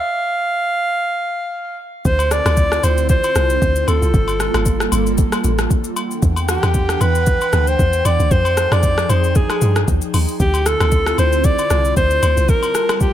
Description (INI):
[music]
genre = amapiano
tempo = 115 BPM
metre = 4/4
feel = swing 55% on 16ths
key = D minor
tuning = A4 = 441 Hz
[part]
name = breathy alto saxophone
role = melody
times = 0.0-13.1 s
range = G4 to F5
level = -19 LUFS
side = equal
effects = ping-pong delay
[part]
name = airy breathy pad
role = sustained chords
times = 2.0-13.1 s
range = D3 to A5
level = -24 LUFS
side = right 1 dB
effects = chorus, sidechain pumping
[part]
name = deep log drum bass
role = bass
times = 2.1-12.5 s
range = G1 to G2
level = -18 LUFS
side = equal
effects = none
[part]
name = smooth R&B drum kit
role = drums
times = 2.1-13.1 s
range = hi-hat, kick drum, rim click, shaker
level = -18 LUFS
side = equal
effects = none
[part]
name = agogo bells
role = percussion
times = 2.2-13.0 s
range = none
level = -28 LUFS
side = left 4 dB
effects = none
[sound]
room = light reverb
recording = none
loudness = -14 LUFS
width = side -11 dB against mid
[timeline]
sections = 0.0-13.1 A section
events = break 0.0-2.1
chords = 0.0 N.C.; 2.1 Dm9; 4.1 Gm9; 6.0 Em9; 8.3 Fm9; 10.4 Dm9; 12.5 Gm9